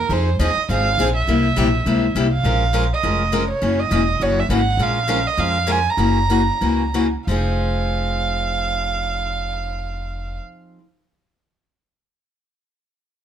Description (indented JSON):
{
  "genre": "acoustic string swing (jazz manouche)",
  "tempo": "174-205 BPM",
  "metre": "4/4",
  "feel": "swing 58% on 8ths",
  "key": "F minor",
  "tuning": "A4 = 440 Hz",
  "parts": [
    { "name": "dark violin", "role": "melody", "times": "0.0-10.4 s", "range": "Bb4 to Bb5", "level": "-22 LUFS", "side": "right 5 dB", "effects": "none" },
    { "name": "upright bass", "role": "bass", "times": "0.0-10.4 s", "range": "Fb1 to F2", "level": "-22 LUFS", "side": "equal", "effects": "none" },
    { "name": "picked steel-string acoustic guitar", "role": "accompaniment", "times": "0.1-10.8 s", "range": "C3 to Bb4", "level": "-22 LUFS", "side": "left 3 dB", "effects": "none" }
  ],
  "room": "light reverb",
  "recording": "none",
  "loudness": "-17 LUFS",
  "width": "side -9 dB against mid",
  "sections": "0.0-2.4 A section; 2.4-7.3 B section; 7.3-10.0 C section",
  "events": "slowing down 4.8-7.3",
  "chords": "0.1 Fm7; 1.3 C7b9; 2.4 Bbm7; 3.6 Gb7; 4.8 Bbm7; 6.0 Gb7; 7.3 Fm7",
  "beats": "| 0.10 0.39 0.68 0.98 | 1.27 1.56 1.85 2.15 | 2.44 2.73 3.03 3.32 | 3.61 3.90 4.20 4.49 | 4.78 5.08 5.37 5.67 | 5.98 6.29 6.61 6.94 | 7.28 7.62 7.97 8.31 | 8.66 9.00 9.35 9.69"
}